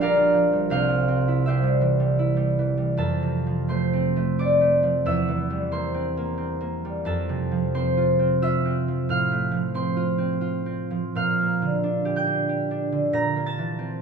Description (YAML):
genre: classical, solo harp piece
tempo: 72-93 BPM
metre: 3/4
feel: rubato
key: F major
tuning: A4 = 441 Hz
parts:
  - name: concert harp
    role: solo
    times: 0.0-14.0 s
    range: Bb1 to Bb6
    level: -21 LUFS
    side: right 2 dB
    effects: none
room: light reverb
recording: close, detailed microphones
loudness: -21 LUFS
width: side -6 dB against mid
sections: 0.0-3.0 A section; 3.0-14.0 B section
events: none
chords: 0.0 Gm7/Bb; 0.7 C; 3.0 F; 5.0 C7/E; 7.1 F; 9.1 F/A; 11.1 Gm7/Bb; 13.1 C7/Bb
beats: | 0.69 1.44 2.17 | 2.96 3.68 4.36 | 5.03 5.70 6.38 | 7.06 7.74 8.43 | 9.09 9.75 10.43 | 11.15 11.82 12.47 | 13.13 13.79